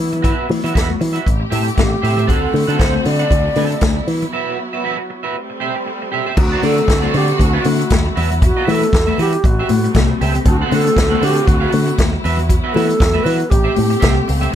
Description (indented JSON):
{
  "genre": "disco",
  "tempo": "118 BPM",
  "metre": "4/4",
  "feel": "swing 56% on 16ths",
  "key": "A dorian",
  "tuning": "A4 = 437 Hz",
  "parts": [
    { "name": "clear studio string section", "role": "sustained chords", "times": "0.0-14.6 s", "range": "D3 to G4", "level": "-24 LUFS", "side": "left 1 dB", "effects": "none" },
    { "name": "picked electric bass with an envelope filter", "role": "bass", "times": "0.0-14.5 s", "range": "A1 to E3", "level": "-18 LUFS", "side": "equal", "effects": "none" },
    { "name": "electric guitar at the edge of break-up", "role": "accompaniment", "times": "0.1-14.6 s", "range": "F#4 to A5", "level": "-23 LUFS", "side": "right 5 dB", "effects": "analog chorus" },
    { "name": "vintage drum kit", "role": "drums", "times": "0.1-14.5 s", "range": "crash cymbal, hi-hat, kick drum, snare drum", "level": "-18 LUFS", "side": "equal", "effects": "none" },
    { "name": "congas", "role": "percussion", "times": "0.1-14.5 s", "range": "none", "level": "-23 LUFS", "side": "left 11 dB", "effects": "none" },
    { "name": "breathy wooden-headed alto flute", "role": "melody", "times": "1.8-14.3 s", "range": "F#4 to D5", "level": "-20 LUFS", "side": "right 1 dB", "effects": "none" }
  ],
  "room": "little or no reverb",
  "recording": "none",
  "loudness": "-13 LUFS",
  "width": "side -10 dB against mid",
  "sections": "0.0-6.4 A section; 6.4-14.6 B section",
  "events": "break 4.3-6.4",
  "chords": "0.0 Esus2; 1.3 Am7; 2.3 D7; 4.1 Esus2; 5.4 Am7; 6.4 D7; 8.2 Esus2; 9.4 Am7; 10.5 D7; 12.2 Esus2; 13.5 Am7"
}